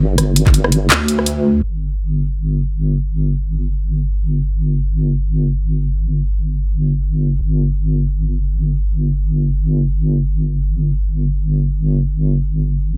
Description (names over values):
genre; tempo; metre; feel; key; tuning
half-time drum and bass; free time; none; none; unclear; A4 = 440 Hz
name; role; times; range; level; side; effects
deep soft wobble bass; bass; 0.0-13.0 s; G1 to D2; -18 LUFS; equal; chorus
drum and bass drum kit; drums; 0.2-1.3 s; handclaps, hi-hat, rim click; -18 LUFS; equal; studio reverb
electronic kick drum; drums; 0.5 s; none; -13 LUFS; equal; studio reverb
room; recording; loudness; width
little or no reverb; low-pass filter; -17 LUFS; mono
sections
0.0-1.6 A section; 1.6-13.0 B section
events
drop 0.0-1.6; kick drops out 1.3-1.6; filter sweep 1.6-13.0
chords
none